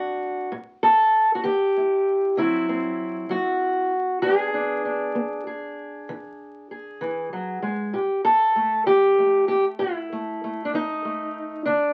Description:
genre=acoustic country blues, solo or duo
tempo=65 BPM (dotted quarters)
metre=12/8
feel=straight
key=unclear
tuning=A4 = 440 Hz
part: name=fingerpicked steel-string acoustic guitar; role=solo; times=0.0-11.9 s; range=A2 to A4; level=-23 LUFS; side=equal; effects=none
room=moderate studio ambience, RT60 0.5 s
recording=very old 78 rpm record, vinyl crackle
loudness=-23 LUFS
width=mono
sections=0.0-7.9 A section; 7.9-11.9 A section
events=none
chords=0.0 D7; 0.5 A5; 2.4 D7; 4.2 E7; 7.9 A5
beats=| 0.51 1.44 2.36 3.29 | 4.22 5.15 6.08 7.01 | 7.94 8.87 9.80 10.73 | 11.66

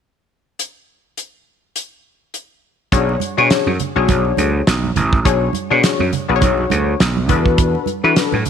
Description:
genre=early-eighties boogie funk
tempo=103 BPM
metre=4/4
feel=swing 56% on 16ths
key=B dorian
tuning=A4 = 436 Hz
part: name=damped 70s drum kit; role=drums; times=0.6-8.5 s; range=hi-hat, kick drum, snare drum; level=-18 LUFS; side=right 1 dB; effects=none
part: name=funky polysynth comp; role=accompaniment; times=2.9-8.4 s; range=D4 to C#5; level=-19 LUFS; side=left 11 dB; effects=chorus
part: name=gritty slap bass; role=bass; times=2.9-8.4 s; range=A1 to E3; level=-16 LUFS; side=right 2 dB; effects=overdrive
part: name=congas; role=percussion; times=2.9-8.5 s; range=none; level=-25 LUFS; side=right 13 dB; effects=none
room=light reverb, small room ambience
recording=1960s-style stereo with parts hard left and right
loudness=-14 LUFS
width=side -8 dB against mid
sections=0.6-2.9 A section; 2.9-8.5 B section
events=none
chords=0.6 N.C.; 2.9 Bm69; 7.3 E9sus4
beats=| 0.59 1.17 1.76 2.34 | 2.92 3.50 4.09 4.67 | 5.25 5.83 6.42 7.00 | 7.58 8.16

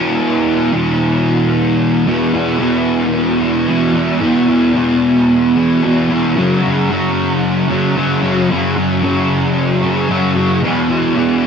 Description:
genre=rock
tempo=112 BPM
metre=4/4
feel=straight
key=unclear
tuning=A4 = 440 Hz
part: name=fuzz guitar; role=solo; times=0.0-11.5 s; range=E2 to F#3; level=-12 LUFS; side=equal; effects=distortion, ensemble chorus
room=light reverb, digital ambience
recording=dark, warm production, nothing above 8.0 kHz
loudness=-12 LUFS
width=side -6 dB against mid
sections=0.0-2.1 A section; 2.1-11.5 B section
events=none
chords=0.0 E5; 6.3 F#5; 10.6 E5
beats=0.46 0.99 1.53 | 2.07 2.60 3.14 3.67 | 4.21 4.75 5.28 5.82 | 6.35 6.88 7.42 7.95 | 8.49 9.02 9.56 10.09 | 10.62 11.16

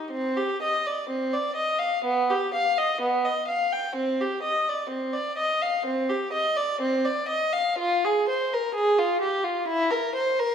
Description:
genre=classical, baroque-style suite movement for unaccompanied violin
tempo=63 BPM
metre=4/4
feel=rubato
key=C minor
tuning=A4 = 440 Hz
part: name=warm violin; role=solo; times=0.0-10.5 s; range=B3 to G5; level=-23 LUFS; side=equal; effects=none
room=wet recital hall reverb, RT60 1.3 s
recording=recorded in a church or concert hall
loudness=-23 LUFS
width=side -7 dB against mid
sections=0.1-10.5 A section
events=none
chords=none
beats=| 0.07 1.08 2.04 2.99 | 3.95 4.90 5.85 6.80 | 7.79 8.76 9.69

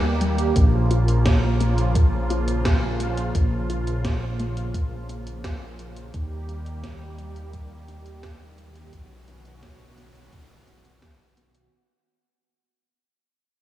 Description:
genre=synthwave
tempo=86 BPM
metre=4/4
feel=straight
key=Bb dorian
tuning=A4 = 440 Hz
part: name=warm analog pad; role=sustained chords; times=0.0-11.7 s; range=Db3 to G4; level=-29 LUFS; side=right 3 dB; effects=chorus, cassette tape
part: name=fat analog bass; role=bass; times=0.0-11.7 s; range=Bb1 to Eb2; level=-24 LUFS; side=equal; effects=tube saturation, sidechain pumping
part: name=warbly dusty pluck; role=arpeggios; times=0.2-11.6 s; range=G3 to Bb4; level=-33 LUFS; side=left 3 dB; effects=none
part: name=gated 80s digital drum machine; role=drums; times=0.2-11.7 s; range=hi-hat, snare drum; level=-31 LUFS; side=equal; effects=gated reverb, gated reverb snare
part: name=electronic kick drum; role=drums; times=0.6-11.2 s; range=none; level=-20 LUFS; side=equal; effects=none
room=light reverb, digital ambience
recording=home recording on cassette, small room ambience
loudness=-20 LUFS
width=side -13 dB against mid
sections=0.0-11.7 A section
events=fade-out 0.0-11.7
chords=0.0 Eb; 0.6 Bbm; 6.1 Eb; 8.9 Badd9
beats=| 0.56 1.26 1.95 2.65 | 3.35 4.05 4.74 5.44 | 6.14 6.84 7.54 8.23 | 8.93 9.63 10.32 11.02

